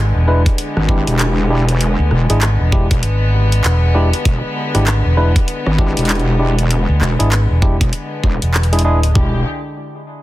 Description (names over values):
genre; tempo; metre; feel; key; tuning
glitch hop; 98 BPM; 4/4; swing 61% on 16ths; unclear; A4 = 440 Hz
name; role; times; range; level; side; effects
warm studio string section; sustained chords; 0.0-9.4 s; D3 to G4; -23 LUFS; left 2 dB; sidechain pumping
fingered electric bass; bass; 0.0-9.1 s; E1 to D2; -14 LUFS; equal; none
tine electric piano; stabs; 0.3-9.4 s; G#3 to B4; -21 LUFS; equal; sidechain pumping, tape echo
drum and bass drum kit; drums; 0.5-9.3 s; kick drum, toms; -15 LUFS; equal; none
drum and bass drum kit; drums; 0.5-9.1 s; handclaps, hi-hat, rim click; -22 LUFS; equal; soft clipping on snare
wobble bass; bass; 0.8-9.4 s; E1 to G#1; -16 LUFS; equal; chorus
room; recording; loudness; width
light reverb; dense, heavily limited modern master; -12 LUFS; side -16 dB against mid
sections
0.0-9.2 A section; 9.2-10.2 B section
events
drop 0.0-9.2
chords
0.0 E7#9